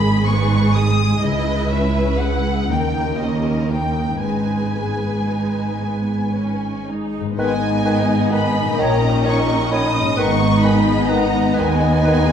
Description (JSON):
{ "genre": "classical, slow romantic movement for symphony orchestra", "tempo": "37-44 BPM (dotted quarters)", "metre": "6/8", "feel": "rubato", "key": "G# minor", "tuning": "A4 = 440 Hz", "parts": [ { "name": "warm symphonic violin section", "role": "melody", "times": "0.0-12.3 s", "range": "D#5 to D#6", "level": "-25 LUFS", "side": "left 2 dB", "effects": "none" }, { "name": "warm symphonic violin section", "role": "second line", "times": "0.0-12.3 s", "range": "G#3 to D#5", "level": "-27 LUFS", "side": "left 1 dB", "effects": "none" }, { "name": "warm symphonic viola section", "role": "accompaniment", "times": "0.0-12.3 s", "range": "G#3 to B4", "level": "-27 LUFS", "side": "equal", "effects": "none" }, { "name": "concert harp", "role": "arpeggios", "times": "0.0-12.3 s", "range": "G#2 to B4", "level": "-27 LUFS", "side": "left 7 dB", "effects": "none" }, { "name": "warm symphonic cello section", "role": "bass", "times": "0.0-12.3 s", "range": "C#2 to A#2", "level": "-22 LUFS", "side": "right 2 dB", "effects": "none" }, { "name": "warm symphonic double bass section", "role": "bass", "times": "0.0-12.3 s", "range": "G#1 to D#2", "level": "-22 LUFS", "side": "right 3 dB", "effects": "none" }, { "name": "mellow hollow concert flute", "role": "second line", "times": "7.4-12.3 s", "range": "D#5 to B5", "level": "-26 LUFS", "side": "equal", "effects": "none" }, { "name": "warm clarinet", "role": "second line", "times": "7.4-12.2 s", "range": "B4 to C#5", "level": "-27 LUFS", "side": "left 3 dB", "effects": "none" }, { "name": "clear bassoon", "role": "accompaniment", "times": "7.4-12.2 s", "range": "D#3", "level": "-26 LUFS", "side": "right 2 dB", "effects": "none" }, { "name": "warm French horn section", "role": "sustained chords", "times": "7.4-12.3 s", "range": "B3 to D#4", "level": "-23 LUFS", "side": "left 4 dB", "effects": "none" } ], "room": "moderate recital hall reverb, RT60 1.6 s", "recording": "dark, warm production", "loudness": "-16 LUFS", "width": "side -8 dB against mid", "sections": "0.0-7.4 A section; 7.4-12.3 B section", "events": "none", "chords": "0.0 G#m; 1.2 C#m; 2.7 D#7; 4.2 G#m; 8.8 D#7/A#; 10.2 G#m" }